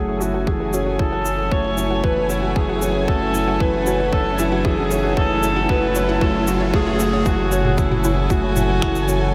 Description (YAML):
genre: piano and strings electronica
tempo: 115 BPM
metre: 4/4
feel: straight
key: F# minor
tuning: A4 = 443 Hz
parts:
  - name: warm viola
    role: melody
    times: 0.0-9.3 s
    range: E4 to C#5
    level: -25 LUFS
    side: equal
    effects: low-pass filter, analog delay
  - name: warm studio string section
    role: sustained chords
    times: 0.0-9.3 s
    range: C#3 to G#5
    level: -29 LUFS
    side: equal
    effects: sidechain pumping, low-pass filter
  - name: analog pluck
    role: arpeggios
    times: 0.0-9.3 s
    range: E4 to F#5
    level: -33 LUFS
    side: equal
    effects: none
  - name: warm upright piano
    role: riff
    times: 0.0-9.3 s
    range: E3 to F#4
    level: -26 LUFS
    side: equal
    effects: analog delay
  - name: round analog bass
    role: bass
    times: 0.0-9.3 s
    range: F#1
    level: -27 LUFS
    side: equal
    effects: sidechain pumping
  - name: riser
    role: sound effects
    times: 2.5-7.3 s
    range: none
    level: -34 LUFS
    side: equal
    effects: none
  - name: organic electronic drum kit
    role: drums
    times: 0.2-9.2 s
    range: finger snaps, shaker, toms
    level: -30 LUFS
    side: equal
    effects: overdrive, high-pass filter on perc, high-pass filter on toms, high-pass filter on snare, high-pass filter on room
  - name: electronic kick drum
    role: drums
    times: 0.5-8.9 s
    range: none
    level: -24 LUFS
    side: equal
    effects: overdrive
room: wet huge ambient reverb, RT60 8.3 s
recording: dreamy mix soaked in reverb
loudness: -19 LUFS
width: mono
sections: 0.0-7.3 A section; 7.3-9.3 B section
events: build-up 0.0-7.3; riser 2.5-7.3; drop 7.3-9.3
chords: 0.0 F#m7